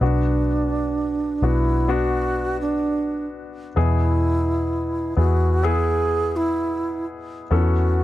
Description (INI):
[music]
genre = pop ballad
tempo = 64 BPM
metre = 4/4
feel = straight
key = B minor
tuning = A4 = 441 Hz
[part]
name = breathy wooden-headed alto flute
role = melody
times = 0.0-8.0 s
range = D4 to G#4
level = -23 LUFS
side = right 2 dB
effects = none
[part]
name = clear baby grand piano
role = accompaniment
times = 0.0-8.0 s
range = B2 to A4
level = -26 LUFS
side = left 5 dB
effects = none
[part]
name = vintage muted fingered electric bass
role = bass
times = 0.0-8.0 s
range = B1 to E2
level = -21 LUFS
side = equal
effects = none
[sound]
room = little or no reverb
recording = dry, close 1970s-style studio recording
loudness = -19 LUFS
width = side -15 dB against mid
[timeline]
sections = 0.0-8.0 A section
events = none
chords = 0.0 Bm; 3.8 E; 7.5 Aadd9/E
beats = | 0.01 0.95 1.89 2.82 | 3.76 4.70 5.64 6.57 | 7.51